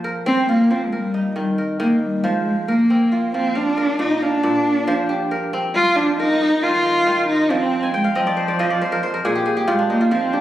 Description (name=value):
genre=west african traditional, West African string and xylophone music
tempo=91 BPM (dotted quarters)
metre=12/8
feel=straight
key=F dorian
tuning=A4 = 439 Hz
part: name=kora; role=arpeggios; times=0.0-10.4 s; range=Bb2 to Ab5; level=-22 LUFS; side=right 1 dB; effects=none
part: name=dark cello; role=melody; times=0.3-10.4 s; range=F3 to F4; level=-18 LUFS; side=equal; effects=slapback echo
room=moderate recital hall reverb, RT60 1.4 s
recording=recorded on a phone in the room, studio reverb, compression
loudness=-16 LUFS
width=side -13 dB against mid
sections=0.0-10.4 A section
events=cello solo 0.0-10.4; kora fill 7.8-10.1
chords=0.0 F5; 0.9 Eb; 2.2 Fm; 3.6 Bb; 4.9 F5; 6.2 Eb5; 7.5 F5; 8.8 N.C.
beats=0.26 0.92 1.58 | 2.24 2.90 3.56 4.21 | 4.87 5.53 6.19 6.84 | 7.50 8.15 8.81 9.46 | 10.11